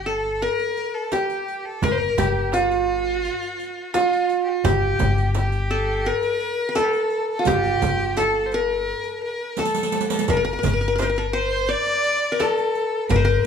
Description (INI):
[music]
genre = Arabic maqam ensemble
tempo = 85 BPM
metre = 4/4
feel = straight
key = G maqam rast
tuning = A4 = 438 Hz
[part]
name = qanun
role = melody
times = 0.0-13.5 s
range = F#4-50c to D5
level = -22 LUFS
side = equal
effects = none
[part]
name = rich violin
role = second line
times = 0.0-13.5 s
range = F4+44c to D5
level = -27 LUFS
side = left 1 dB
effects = none
[part]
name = upright bass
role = bass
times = 0.0-13.4 s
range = G1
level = -25 LUFS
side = left 2 dB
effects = none
[part]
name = darbuka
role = percussion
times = 0.1-13.3 s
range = none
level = -31 LUFS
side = right 3 dB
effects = none
[part]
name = riq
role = percussion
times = 0.4-13.3 s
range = none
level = -31 LUFS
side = right 5 dB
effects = none
[part]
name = frame drum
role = percussion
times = 1.1-13.3 s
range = none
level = -28 LUFS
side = right 2 dB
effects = none
[sound]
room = moderate large studio reverb, RT60 0.9 s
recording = band playing live in one room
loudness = -20 LUFS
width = side -7 dB against mid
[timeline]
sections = 0.0-13.5 A section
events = drum fill 9.6-10.3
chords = none